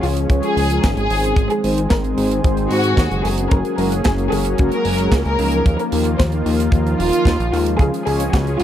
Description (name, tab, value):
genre	italo disco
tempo	112 BPM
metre	4/4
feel	straight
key	Db major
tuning	A4 = 440 Hz
part	warm studio violin section	melody	0.0-8.6 s	F4 to C5	-22 LUFS	equal	tape echo
part	lush unison pad	sustained chords	0.0-8.6 s	Eb3 to Ab4	-24 LUFS	equal	chorus
part	mellow synth brass	stabs	0.0-8.6 s	F3 to F5	-23 LUFS	left 2 dB	chorus
part	fat analog bass	bass	0.0-8.6 s	Eb1 to Ab2	-21 LUFS	equal	none
part	tight funk drum kit	drums	0.0-8.6 s	hi-hat, snare drum	-26 LUFS	right 2 dB	none
part	kick drum	drums	0.3-8.4 s	none	-16 LUFS	equal	none
room	little or no reverb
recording	dry, close 1970s-style studio recording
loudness	-15 LUFS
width	side -11 dB against mid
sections	0.0-8.6 A section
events	none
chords	0.0 Db; 1.4 Ab; 3.5 Gbadd9; 5.7 Ebsus2; 7.8 Db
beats	0.30 0.83 | 1.37 1.91 2.44 2.98 | 3.51 4.05 4.58 5.12 | 5.66 6.19 6.73 7.26 | 7.80 8.33